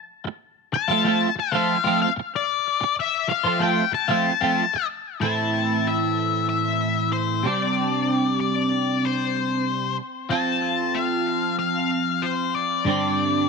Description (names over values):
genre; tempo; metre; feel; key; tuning
rock; 94 BPM; 4/4; straight; unclear; A4 = 437 Hz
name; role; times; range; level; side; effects
twelve-string electric guitar; riff; 0.2-13.5 s; G2 to A4; -22 LUFS; right 3 dB; phaser, double-tracked left and right
octave-fuzz lead guitar; melody; 0.7-13.5 s; C5 to A5; -24 LUFS; left 10 dB; wah, distortion, tape echo
room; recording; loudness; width
light reverb; none; -20 LUFS; side -4 dB against mid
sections
0.0-5.2 A section; 5.2-13.5 B section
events
none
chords
0.0 F; 5.2 Am; 7.4 Csus2; 10.3 F; 12.9 Gsus4